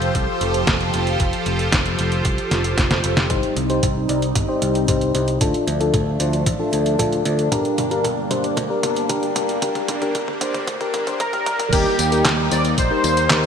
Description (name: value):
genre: synthwave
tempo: 114 BPM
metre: 4/4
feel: straight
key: G minor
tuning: A4 = 440 Hz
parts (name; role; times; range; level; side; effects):
- phased analog pad; sustained chords; 0.0-13.5 s; F3 to C5; -23 LUFS; equal; phaser, chorus, sidechain pumping
- picked electric bass; bass; 0.0-13.5 s; F1 to Eb2; -24 LUFS; equal; sidechain pumping
- detuned 8-bit digital drum machine; drums; 0.0-13.5 s; crash cymbal, handclaps, hi-hat, snare drum, tambourine, toms; -23 LUFS; equal; studio reverb
- electronic kick drum; drums; 0.1-12.9 s; none; -24 LUFS; equal; studio reverb
- mellow FM electric piano; stabs; 3.3-13.5 s; D4 to D5; -23 LUFS; left 2 dB; chorus, digital delay
- soft supersaw; melody; 11.2-13.5 s; G4 to D5; -20 LUFS; equal; digital delay
room: wet lush hall reverb, RT60 2.1 s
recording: bright 1980s-style digital production, high-pass filter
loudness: -17 LUFS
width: side -7 dB against mid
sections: 0.0-3.3 A section; 3.3-11.7 B section; 11.7-13.5 C section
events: drum fill 2.5-3.3, 3.3-11.7; filter sweep on analog synth pad 3.3-11.7; filter sweep 3.3-11.7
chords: 0.0 Fadd9; 3.3 Cm; 5.4 Dm; 7.5 Gm; 11.7 Eb